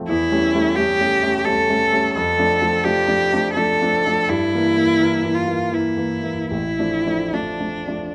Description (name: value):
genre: classical, romantic duo for cello and grand piano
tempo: 73-92 BPM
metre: 3/4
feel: rubato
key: D minor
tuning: A4 = 440 Hz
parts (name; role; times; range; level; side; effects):
- warm grand piano; accompaniment; 0.0-8.1 s; A1 to D4; -24 LUFS; equal; none
- rich cello; melody; 0.1-8.1 s; D4 to A4; -21 LUFS; equal; none
room: moderate recital hall reverb, RT60 1.6 s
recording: close, detailed microphones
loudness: -19 LUFS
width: mono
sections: 0.0-8.1 A section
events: none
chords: 0.1 A7/E; 2.1 Dm/F; 4.3 Edim/G; 6.5 Dm/A